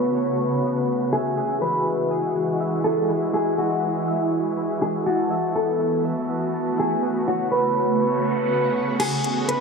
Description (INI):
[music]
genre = hip hop, atmospheric cloud-rap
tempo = 122 BPM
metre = 4/4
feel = half-time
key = E major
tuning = A4 = 439 Hz
[part]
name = mellow electric guitar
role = melody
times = 0.0-9.6 s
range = F#4 to B4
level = -24 LUFS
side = left 1 dB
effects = lush chorus, ping-pong delay
[part]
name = shimmering ambient pad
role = sustained chords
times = 0.0-9.6 s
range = C#3 to F#4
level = -24 LUFS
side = right 1 dB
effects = chorus, built-in reverb
[part]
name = glassy digital keys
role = arpeggios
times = 0.0-9.0 s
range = E3 to A5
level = -28 LUFS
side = right 1 dB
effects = chorus, ping-pong delay
[part]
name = wind-like tuned noise texture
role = texture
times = 0.0-9.6 s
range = G#3 to D#5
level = -34 LUFS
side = right 2 dB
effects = built-in reverb, analog chorus
[part]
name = smooth R&B drum kit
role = drums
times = 9.0-9.6 s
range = crash cymbal, hi-hat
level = -28 LUFS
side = left 2 dB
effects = none
[sound]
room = moderate plate reverb, RT60 1.9 s, digital ambience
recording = bright 1980s-style digital production, low-pass filter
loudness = -20 LUFS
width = side -4 dB against mid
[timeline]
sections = 0.0-9.0 A section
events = filter sweep 0.0-9.0; kick muted 9.0-9.6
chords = 0.0 A69; 1.1 Emaj9; 5.1 B7sus4; 7.0 A69; 9.0 Emaj9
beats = 0.14 0.64 | 1.13 1.62 2.11 2.60 | 3.10 3.59 4.08 4.57 | 5.06 5.55 6.05 6.54 | 7.03 7.52 8.01 8.51 | 9.00 9.49